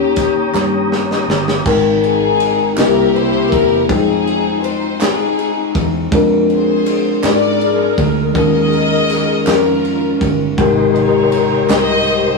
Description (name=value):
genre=slow gospel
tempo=54 BPM (dotted quarters)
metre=6/8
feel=straight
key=Ab major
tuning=A4 = 442 Hz
part: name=warm studio string section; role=melody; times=0.0-12.4 s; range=Bb3 to Eb5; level=-17 LUFS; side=left 4 dB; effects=none
part: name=mellow tine electric piano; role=accompaniment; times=0.0-12.4 s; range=Ab2 to G5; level=-16 LUFS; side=left 3 dB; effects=medium stereo tremolo
part: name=mellow tonewheel organ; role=sustained chords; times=0.0-1.6, 10.6-12.4 s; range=Bb4 to Eb6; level=-20 LUFS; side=left 1 dB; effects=fast rotary speaker, chorus vibrato
part: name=fingered electric bass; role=bass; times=0.0-12.4 s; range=E1 to Ab2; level=-21 LUFS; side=right 2 dB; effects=none
part: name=crisp fusion drum kit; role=drums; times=0.2-12.2 s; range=crash cymbal, hi-hat, kick drum, ride cymbal, snare drum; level=-20 LUFS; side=equal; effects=none
part: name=group handclap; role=percussion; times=0.5-12.0 s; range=none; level=-27 LUFS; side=right 4 dB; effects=none
room=moderate studio reverb, RT60 0.7 s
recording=rough rehearsal-room recording, tube saturation, studio ambience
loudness=-12 LUFS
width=side -2 dB against mid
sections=0.0-1.7 A section; 1.7-12.4 B section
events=drum fill 0.5-1.7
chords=0.0 Eb7; 1.7 Abmaj9; 2.8 C7; 3.9 Fm9; 6.1 Bb9/F; 8.4 Eb9sus4; 10.6 Abmaj9